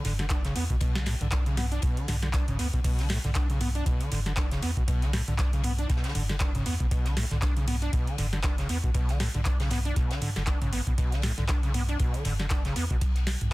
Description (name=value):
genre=acid house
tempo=118 BPM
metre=4/4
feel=swing 57% on 16ths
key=B minor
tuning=A4 = 440 Hz
part: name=overdriven acid bass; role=riff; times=0.0-13.0 s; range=A2 to D4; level=-32 LUFS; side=equal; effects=distortion, ensemble chorus, cassette tape, dub echo
part: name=warm sub bass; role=bass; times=0.0-13.5 s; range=F#1 to E2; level=-30 LUFS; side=equal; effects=sidechain pumping
part: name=booming analog drum machine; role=drums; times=0.0-13.5 s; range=crash cymbal, handclaps, hi-hat, snare drum, toms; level=-32 LUFS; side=right 1 dB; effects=none
part: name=loose indie drum kit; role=drums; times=0.0-13.4 s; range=ride cymbal, snare drum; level=-42 LUFS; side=left 3 dB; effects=sidechain pumping on cymbals, high-pass filter on cymbals, high-pass filter on snare, high-pass filter on room
part: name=electronic kick drum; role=drums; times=0.3-13.1 s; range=none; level=-28 LUFS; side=equal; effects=none
room=little or no reverb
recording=dense, heavily limited modern master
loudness=-25 LUFS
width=side -20 dB against mid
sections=0.0-13.5 A section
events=none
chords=0.0 B5